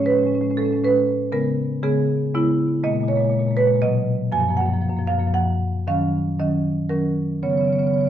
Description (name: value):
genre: classical, contemporary piece for solo marimba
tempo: 118 BPM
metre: 3/4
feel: straight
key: F# major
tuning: A4 = 442 Hz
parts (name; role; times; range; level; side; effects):
- marimba with medium hard mallets; solo; 0.0-8.1 s; F#2 to G#5; -18 LUFS; equal; none
room: wet stone room reverb, RT60 1.1 s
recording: worn, warbling old tape, cassette tape, warbly pitch drift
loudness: -18 LUFS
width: side -10 dB against mid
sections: 0.0-8.1 A section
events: none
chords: 0.0 Amaj9; 1.3 Dbm7; 2.8 A#m7; 3.8 Bmaj7; 4.3 F#maj7; 5.9 D#m9; 7.4 C#7sus4